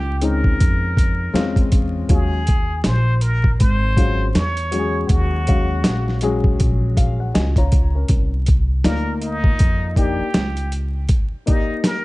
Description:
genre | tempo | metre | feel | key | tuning
hip hop, jazz-hop | 80 BPM | 4/4 | swing 61% on 16ths | C phrygian | A4 = 440 Hz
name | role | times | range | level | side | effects
trumpet with plunger mute | melody | 0.0-12.0 s | Eb4 to Db5 | -26 LUFS | equal | slapback echo
upright bass | bass | 0.0-11.1 s | Ab1 to F2 | -20 LUFS | equal | none
dark grand piano | accompaniment | 0.2-12.0 s | Gb3 to Bb5 | -24 LUFS | left 4 dB | none
boom bap sampler-style drum kit | drums | 0.2-12.0 s | hi-hat, kick drum, snare drum | -17 LUFS | equal | none
room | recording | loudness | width
small room reverb | dark, warm production, vinyl crackle, nothing above 10.4 kHz | -16 LUFS | side -20 dB against mid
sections
0.0-8.1 A section; 8.1-12.0 B section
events
grand piano fill 6.6-8.1; muted trumpet solo 8.1-12.0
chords
0.0 Bbm11; 2.1 Ebm11; 8.1 Cm11

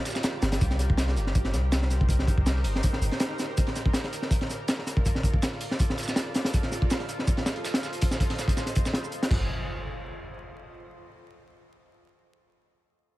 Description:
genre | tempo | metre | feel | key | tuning
drum and bass, jungle | 162 BPM | 4/4 | straight | unclear | A4 = 437 Hz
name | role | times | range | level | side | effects
granular cloud pad | sustained chords | 0.0-9.5 s | Eb4 to Eb5 | -36 LUFS | right 1 dB | built-in reverb
crunchy breakbeat drum kit | drums | 0.1-9.4 s | crash cymbal, hi-hat, kick drum, snare drum | -26 LUFS | equal | none
dusty soul sampler-style drum kit | drums | 0.1-9.1 s | hi-hat, shaker, snare drum | -38 LUFS | right 3 dB | high-pass filter on snare, high-pass filter on perc, high-pass filter on hats
long sustained 808-style bass | bass | 0.4-3.1, 9.3-9.5 s | G1 to C2 | -26 LUFS | equal | none
impact | sound effects | 9.3-10.8 s | none | -37 LUFS | equal | none
room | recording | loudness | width
small room ambience | vinyl crackle | -24 LUFS | side -17 dB against mid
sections
0.0-9.5 A section; 9.5-11.0 B section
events
none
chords
0.0 Gm7; 0.6 Cm7; 3.6 Bbmaj7; 6.5 F7; 9.3 Gm7; 9.5 N.C.

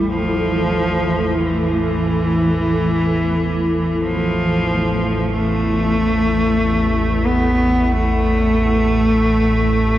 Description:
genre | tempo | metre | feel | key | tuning
dark ambient drone | free time | none | none | unclear | A4 = 441 Hz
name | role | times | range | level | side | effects
rich cello | melody | 0.0-10.0 s | E3 to B3 | -17 LUFS | equal | diffuse ambient delay
granular cloud pad | sustained chords | 0.0-10.0 s | E3 to A4 | -22 LUFS | equal | built-in reverb
analog drone | drone | 0.0-10.0 s | A1 to E2 | -21 LUFS | equal | wide subtle chorus
room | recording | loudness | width
wet huge ambient reverb, RT60 7.9 s | worn, warbling old tape, cassette tape, warbly pitch drift | -15 LUFS | side -13 dB against mid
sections
0.0-10.0 A section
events
fade-in on synth drone 0.0-10.0; fade-out on ambient pad 0.0-10.0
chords
0.0 A5

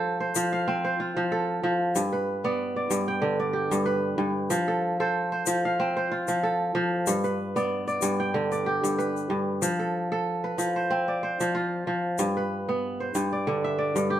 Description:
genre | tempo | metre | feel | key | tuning
west african traditional, West African string and xylophone music | 94 BPM | 4/4 | swing 55% on 16ths | F lydian | A4 = 441 Hz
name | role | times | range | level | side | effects
kora | arpeggios | 0.0-14.2 s | G2 to G5 | -24 LUFS | right 1 dB | none
egg shaker | percussion | 0.3-14.1 s | none | -33 LUFS | left 9 dB | none
room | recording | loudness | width
wet studio reverb, RT60 0.8 s | band playing live in one room | -24 LUFS | side -11 dB against mid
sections
0.0-9.6 A section; 9.6-14.2 B section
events
none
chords
0.0 F; 1.9 G; 4.5 F; 7.1 G; 9.6 F; 12.2 G

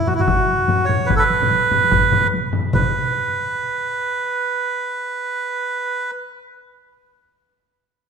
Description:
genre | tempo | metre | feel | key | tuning
japanese traditional, taiko drum ensemble | 147 BPM | 4/4 | swing 60% on 16ths | B suspended pentatonic | A4 = 441 Hz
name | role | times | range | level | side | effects
melodica | melody | 0.0-6.1 s | E4 to C#5 | -19 LUFS | right 3 dB | none
solo taiko drums | percussion | 0.0-3.1 s | none | -24 LUFS | left 6 dB | none
taiko ensemble | percussion | 0.1-2.9 s | none | -28 LUFS | left 2 dB | none
taiko ensemble | percussion | 0.1-3.1 s | none | -24 LUFS | right 2 dB | none
solo taiko drums | percussion | 0.3-2.9 s | none | -27 LUFS | left 1 dB | none
room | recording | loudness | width
wet concert hall reverb, RT60 2.0 s | minimal, uncompressed stereo recording | -17 LUFS | side -6 dB against mid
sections
0.0-2.7 A section; 2.7-6.0 B section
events
none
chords
none

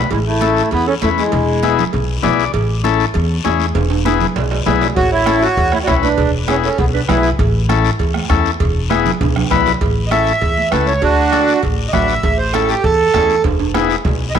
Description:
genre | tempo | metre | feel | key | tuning
latin, cumbia | 198 BPM | 4/4 | straight | A major | A4 = 440 Hz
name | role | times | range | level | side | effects
combo organ | accompaniment | 0.0-14.4 s | B3 to D5 | -19 LUFS | left 11 dB | none
upright bass | bass | 0.0-14.4 s | E1 to E2 | -19 LUFS | left 1 dB | none
accordion | melody | 0.1-1.7, 5.0-7.3, 10.1-14.4 s | G#3 to E5 | -17 LUFS | right 3 dB | none
breathy clarinet | second line | 0.1-1.7, 5.0-7.3 s | E4 to D5 | -23 LUFS | right 8 dB | none
congas | percussion | 0.1-14.4 s | none | -26 LUFS | right 8 dB | none
cowbell and timbales | percussion | 0.1-14.4 s | none | -24 LUFS | right 10 dB | none
guiro | percussion | 0.1-14.4 s | none | -30 LUFS | left 12 dB | none
bombo | percussion | 5.0-14.4 s | none | -22 LUFS | right 2 dB | none
room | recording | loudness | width
moderate echo chamber reverb, RT60 2.0 s, studio reverb | 1960s-style stereo with parts hard left and right | -13 LUFS | side -8 dB against mid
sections
0.1-9.8 A section; 9.8-14.4 B section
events
transistor combo organ fill 2.1-2.5; drum fill 3.8-5.0, 8.9-9.8, 13.4-14.4; accordion solo 9.8-14.4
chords
0.1 A; 1.3 E7; 2.5 A; 3.8 E; 5.0 A; 6.2 E; 7.4 A; 8.6 E; 9.8 A; 11.0 D; 12.2 A; 13.4 E

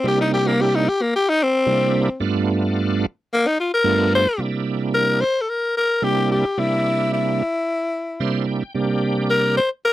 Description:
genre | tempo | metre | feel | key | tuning
blues | 110 BPM | 4/4 | straight | C mixolydian | A4 = 442 Hz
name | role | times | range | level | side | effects
growling tenor saxophone | melody | 0.0-9.9 s | Bb3 to C5 | -18 LUFS | left 2 dB | none
bright tonewheel organ | accompaniment | 0.0-9.6 s | G2 to G5 | -20 LUFS | right 3 dB | slow rotary speaker, overdrive, chorus vibrato
room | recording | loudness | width
light reverb | dry, close 1970s-style studio recording | -18 LUFS | side -14 dB against mid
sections
0.0-4.4 A section; 4.4-9.9 B section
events
tenor saxophone solo 0.0-4.4; tonewheel organ fill 7.9-8.8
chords
0.0 C7; 2.2 G7; 4.4 C7

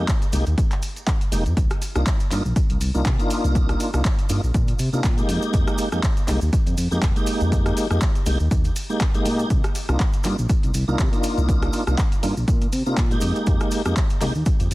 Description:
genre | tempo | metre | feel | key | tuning
deep house | 121 BPM | 4/4 | swing 56% on 16ths | C minor | A4 = 440 Hz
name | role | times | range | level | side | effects
tonewheel organ | stabs | 0.0-14.3 s | Ab3 to G4 | -26 LUFS | equal | overdrive, chorus vibrato, slow rotary speaker, sidechain pumping, low-pass filter, tape echo
smooth gliding synth bass | bass | 0.0-14.7 s | F1 to C3 | -22 LUFS | equal | sidechain pumping
electronic kick drum | drums | 0.1-14.6 s | none | -21 LUFS | equal | vintage 12-bit sampler grit
punchy analog drum machine | drums | 0.1-14.7 s | handclaps, hi-hat, rim click | -31 LUFS | equal | vintage 12-bit sampler grit
maracas | percussion | 0.1-14.7 s | none | -38 LUFS | right 2 dB | none
room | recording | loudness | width
little or no reverb | dense, heavily limited modern master | -19 LUFS | side -19 dB against mid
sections
0.0-14.7 A section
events
none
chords
0.0 Fm11; 1.6 Cm11; 5.3 Fm11; 9.5 Cm11; 13.2 Fm11

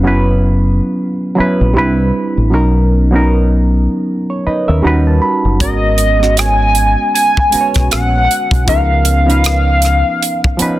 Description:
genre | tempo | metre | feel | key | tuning
R&B, neo-soul | 78 BPM | 4/4 | swing 58% on 16ths | G# minor | A4 = 439 Hz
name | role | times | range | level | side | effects
barky reed electric piano | accompaniment | 0.0-10.8 s | E#3 to B5 | -15 LUFS | right 1 dB | overdrive, phaser
deep dub fingered electric bass | bass | 0.0-10.6 s | F#1 to D#2 | -13 LUFS | equal | none
hollow square lead | melody | 5.6-10.8 s | D#5 to G#5 | -14 LUFS | equal | chorus, phaser, tape echo
tight funk drum kit | drums | 5.6-10.8 s | hi-hat, kick drum, rim click | -16 LUFS | equal | soft clipping on snare
room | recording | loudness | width
little or no reverb | dense, heavily limited modern master | -10 LUFS | side -15 dB against mid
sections
0.0-10.8 A section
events
reed electric piano fill 4.1-5.6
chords
0.0 F#7sus4; 1.8 Cmaj9; 2.5 Bmaj9; 4.8 D#7alt; 5.6 G#m11; 8.7 C#13

